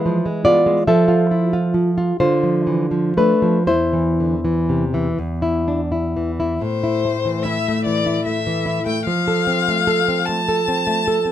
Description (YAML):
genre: romantic duo for violin and classical guitar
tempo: 39-51 BPM (dotted quarters)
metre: 6/8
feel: rubato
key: A minor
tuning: A4 = 442 Hz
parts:
  - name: nylon-string guitar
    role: accompaniment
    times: 0.0-11.3 s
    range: E2 to E5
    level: -17 LUFS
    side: equal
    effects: none
  - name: rich violin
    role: melody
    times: 6.6-11.3 s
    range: C5 to A5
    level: -21 LUFS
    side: left 5 dB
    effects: none
room: light reverb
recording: minimal, uncompressed stereo recording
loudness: -16 LUFS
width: side -11 dB against mid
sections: 0.0-6.6 A section; 6.6-11.3 B section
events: none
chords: 0.0 E; 0.9 Fmaj7; 2.2 Dm; 3.7 Cadd9/E; 5.2 Dsus2/E; 6.6 Am; 9.1 F